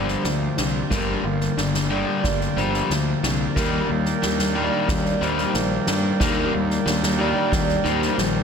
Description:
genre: post-rock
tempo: 91 BPM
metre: 4/4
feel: straight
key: unclear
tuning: A4 = 437 Hz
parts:
  - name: hand-pumped harmonium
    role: sustained chords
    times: 0.0-8.4 s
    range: Eb3 to G5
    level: -30 LUFS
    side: right 9 dB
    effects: none
  - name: electric guitar through a small old amp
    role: arpeggios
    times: 0.0-8.4 s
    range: G2 to G4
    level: -31 LUFS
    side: equal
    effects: tape echo
  - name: vibraphone with medium mallets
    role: arpeggios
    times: 0.0-8.4 s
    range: Bb4 to D5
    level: -30 LUFS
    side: right 8 dB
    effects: tape echo
  - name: overdriven electric guitar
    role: riff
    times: 0.0-8.4 s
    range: G2 to Bb3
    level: -23 LUFS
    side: left 6 dB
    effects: none
  - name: fuzz fingered electric bass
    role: bass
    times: 0.0-8.4 s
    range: G1 to G2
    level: -27 LUFS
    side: right 1 dB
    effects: overdrive
  - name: soft-mallet drum kit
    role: drums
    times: 0.1-8.3 s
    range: kick drum, snare drum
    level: -26 LUFS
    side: right 1 dB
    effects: none
room: light reverb, small room ambience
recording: none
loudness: -19 LUFS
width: side -6 dB against mid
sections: 0.0-8.4 A section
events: build-up 0.0-8.4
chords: 0.0 Gm7; 3.6 Ebmaj7

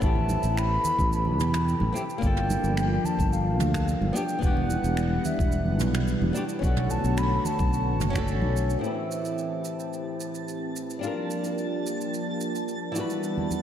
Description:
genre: sunset chillout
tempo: 109 BPM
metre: 4/4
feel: straight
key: A dorian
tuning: A4 = 441 Hz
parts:
  - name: baroque flute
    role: melody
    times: 0.0-8.3 s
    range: E5 to B5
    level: -31 LUFS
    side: left 1 dB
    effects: ping-pong delay
  - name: flamenco guitar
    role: accompaniment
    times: 0.0-13.6 s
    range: A2 to B4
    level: -33 LUFS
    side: moving between left 4 dB and right 3 dB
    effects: auto-pan, low-pass filter, diffuse ambient delay
  - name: lush unison pad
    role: sustained chords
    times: 0.0-13.6 s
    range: D3 to F#5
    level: -31 LUFS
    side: equal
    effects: chorus
  - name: sustaining fretless electric bass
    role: bass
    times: 0.0-8.8 s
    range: E1 to E2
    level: -26 LUFS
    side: equal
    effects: none
  - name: electronic kick drum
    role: drums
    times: 0.0-8.3 s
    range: none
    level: -27 LUFS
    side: equal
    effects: none
  - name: jazz brush drum kit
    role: drums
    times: 0.0-13.6 s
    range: finger snaps, shaker, toms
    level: -36 LUFS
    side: right 4 dB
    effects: none
  - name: congas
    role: percussion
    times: 0.2-8.5, 13.4-13.6 s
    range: none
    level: -35 LUFS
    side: right 3 dB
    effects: none
  - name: twinkling granular texture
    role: texture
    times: 9.3-13.6 s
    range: A5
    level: -40 LUFS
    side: right 2 dB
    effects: built-in reverb, lush chorus
room: wet plate reverb, RT60 2.9 s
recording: dreamy mix soaked in reverb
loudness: -24 LUFS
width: side -10 dB against mid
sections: 0.0-8.8 A section; 8.8-13.6 B section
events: none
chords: 0.0 Am9; 2.2 Gm9; 4.2 Em9; 6.6 Bm9; 8.8 Am9; 11.0 Gm9; 13.0 Em9

